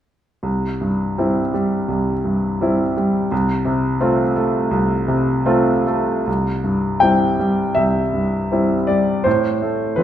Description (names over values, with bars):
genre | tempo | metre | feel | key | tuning
classical, romantic character piece for solo piano | 82 BPM | 4/4 | uneven beats, rubato | C major | A4 = 440 Hz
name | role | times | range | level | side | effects
warm concert grand piano | solo | 0.4-10.0 s | C2 to G5 | -16 LUFS | equal | none
room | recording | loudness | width
wet recital hall reverb, RT60 1.5 s | minimal, uncompressed stereo recording | -16 LUFS | side -10 dB against mid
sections
0.4-6.3 A section; 6.3-10.0 B section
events
none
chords
0.4 C; 3.3 F/C; 6.3 C; 9.3 F/A (rootless)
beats
| 0.44 1.19 1.91 2.62 | 3.31 4.01 4.73 5.47 | 6.27 7.02 7.78 8.52 | 9.26 9.99